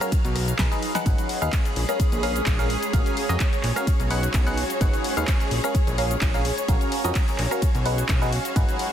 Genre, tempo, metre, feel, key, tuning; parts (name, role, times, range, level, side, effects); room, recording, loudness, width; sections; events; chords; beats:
piano house; 128 BPM; 4/4; swing 53% on 16ths; A4 = 441 Hz
dark studio string section; sustained chords; 0.0-8.9 s; C#4 to E#6; -32 LUFS; equal; vintage 12-bit sampler grit, sidechain pumping
barking FM electric piano; riff; 0.0-8.9 s; C#4 to F#5; -28 LUFS; left 1 dB; phaser, cassette tape, sidechain pumping, ping-pong delay
house drum kit; drums; 0.0-8.9 s; handclaps, hi-hat, ride cymbal, rim click, shaker, snare drum; -30 LUFS; left 1 dB; studio reverb, soft clipping on snare
granular cloud pad; texture; 0.0-8.9 s; F#3 to A#5; -31 LUFS; right 1 dB; built-in reverb, sidechain pumping
electronic kick drum; drums; 0.1-8.7 s; -22 LUFS; equal; studio reverb
fat analog bass; bass; 0.2-8.6 s; G#1 to E#2; -26 LUFS; equal; tube saturation, sidechain pumping
little or no reverb; dense, heavily limited modern master; -20 LUFS; side -10 dB against mid
0.0-8.9 A section
drum fill 0.6-1.1
0.1 B6; 1.1 G#m7; 1.8 A#m7; 2.7 F#maj7/A#; 3.9 B6; 4.8 G#m7; 5.5 A#m7; 6.5 F#maj7/A#; 7.6 B6
0.12 0.59 | 1.06 1.53 2.00 2.46 | 2.93 3.40 3.87 4.34 | 4.81 5.28 5.75 6.21 | 6.68 7.15 7.62 8.09 | 8.56